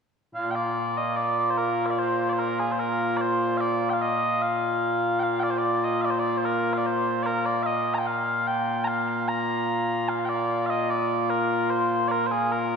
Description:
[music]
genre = scottish traditional, Scottish pipe music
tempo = 74 BPM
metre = 3/4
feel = straight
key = Bb major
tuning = A4 = 441 Hz
[part]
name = mellow small bagpipes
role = solo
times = 0.3-12.8 s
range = Bb2 to Bb5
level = -23 LUFS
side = equal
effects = none
[sound]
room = wet concert hall reverb, RT60 1.9 s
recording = recorded in a church or concert hall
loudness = -23 LUFS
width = side -6 dB against mid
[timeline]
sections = 0.4-10.1 A section; 10.1-12.8 A section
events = none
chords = none

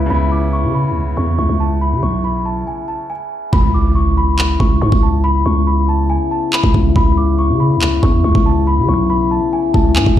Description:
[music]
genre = hip hop, drill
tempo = 140 BPM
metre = 4/4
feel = half-time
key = C# minor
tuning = A4 = 440 Hz
[part]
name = bright concert grand piano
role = accompaniment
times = 0.0-3.5 s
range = C#3 to E4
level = -25 LUFS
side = equal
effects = none
[part]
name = mellow French horn section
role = sustained chords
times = 0.0-10.2 s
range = C#3 to E4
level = -20 LUFS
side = left 7 dB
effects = none
[part]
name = growling 808-style bass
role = bass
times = 0.0-10.2 s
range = B1 to C#3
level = -15 LUFS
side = right 1 dB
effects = none
[part]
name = downlifter and impact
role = sound effects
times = 0.0-0.1, 3.5-5.2 s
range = none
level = -20 LUFS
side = right 1 dB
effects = none
[part]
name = celesta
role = melody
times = 0.1-10.2 s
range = G#5 to D6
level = -21 LUFS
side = equal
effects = tape echo
[part]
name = drill drum kit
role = drums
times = 3.5-10.2 s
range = handclaps, kick drum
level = -14 LUFS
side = right 1 dB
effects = overdrive
[sound]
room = small room reverb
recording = played on a big sound system in a bare room, large studio reverb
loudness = -12 LUFS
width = side -11 dB against mid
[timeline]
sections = 0.0-3.5 A section; 3.5-10.2 B section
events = hi-hats muted 3.5-10.2; impact 3.5-5.2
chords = 0.0 C#m7

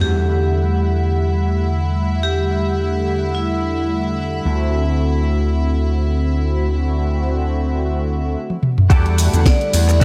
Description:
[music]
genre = nu-disco, nu disco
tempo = 108 BPM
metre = 4/4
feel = swing 55% on 16ths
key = E minor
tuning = A4 = 440 Hz
[part]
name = vibraphone with hard mallets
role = melody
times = 0.0-4.1, 9.5-10.0 s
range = E4 to D5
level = -26 LUFS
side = equal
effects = tape echo
[part]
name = warm analog pad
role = accompaniment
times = 0.0-10.0 s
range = D3 to F#5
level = -25 LUFS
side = equal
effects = chorus, sidechain pumping, analog delay
[part]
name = rich studio string section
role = sustained chords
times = 0.0-10.0 s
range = E4 to F#5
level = -31 LUFS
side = equal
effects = sidechain pumping
[part]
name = vintage slap bass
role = bass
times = 0.0-10.0 s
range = D2 to E2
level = -20 LUFS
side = equal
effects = tube saturation
[part]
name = house drum kit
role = drums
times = 8.5-10.0 s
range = hi-hat, ride cymbal, shaker, snare drum, toms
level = -22 LUFS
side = equal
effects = low-pass filter on hats, low-pass filter on snare, low-pass filter on toms, low-pass filter on cymbals, low-pass filter on perc, low-pass filter on room
[part]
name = direct-recorded clean electric guitar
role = riff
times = 8.9-10.0 s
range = F#4 to D5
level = -29 LUFS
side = equal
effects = ensemble chorus
[part]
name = electronic kick drum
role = drums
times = 8.9-10.0 s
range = none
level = -15 LUFS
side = equal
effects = none
[sound]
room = light reverb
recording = none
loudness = -18 LUFS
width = mono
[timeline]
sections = 0.0-8.9 A section; 8.9-10.0 B section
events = filter sweep on drum 0.0-8.9; drum fill 8.5-8.9; drop 8.9-10.0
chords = 0.0 Em11; 4.5 D7; 8.9 Em11

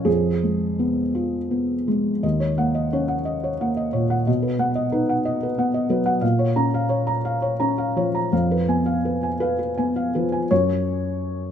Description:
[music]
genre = neoclassical minimalist piano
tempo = 54-62 BPM (dotted quarters)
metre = 6/8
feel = rubato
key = Eb minor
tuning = A4 = 441 Hz
[part]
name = felt-muted upright piano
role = solo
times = 0.0-11.5 s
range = Eb2 to Bb5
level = -20 LUFS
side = equal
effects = none
[sound]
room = moderate recital hall reverb, RT60 1.5 s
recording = minimal, uncompressed stereo recording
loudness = -20 LUFS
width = side -8 dB against mid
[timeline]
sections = 0.0-2.2 A section; 2.2-10.5 B section; 10.5-11.5 C section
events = none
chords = 0.1 Fdim; 2.2 Ebm7; 4.3 B; 6.2 Bbm; 8.3 Fdim; 10.5 Gb5

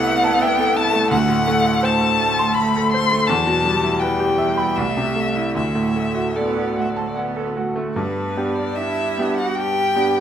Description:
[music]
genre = classical, slow romantic movement for piano trio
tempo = 74-85 BPM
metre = 3/4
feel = rubato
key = G major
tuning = A4 = 440 Hz
[part]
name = clear violin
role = melody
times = 0.0-10.2 s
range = B4 to C6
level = -21 LUFS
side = left 4 dB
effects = none
[part]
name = rich cello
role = second line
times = 0.0-10.2 s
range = E3 to G4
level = -26 LUFS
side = right 9 dB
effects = none
[part]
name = bright grand piano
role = accompaniment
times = 0.0-10.2 s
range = C2 to C6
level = -20 LUFS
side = equal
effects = none
[sound]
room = wet recital hall reverb, RT60 1.2 s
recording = none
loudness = -17 LUFS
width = side -9 dB against mid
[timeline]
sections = 0.0-8.0 A section; 8.0-10.2 B section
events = none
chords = 0.0 Am/C; 1.1 D7; 3.3 Em; 4.8 Am/C; 5.6 D; 8.0 G

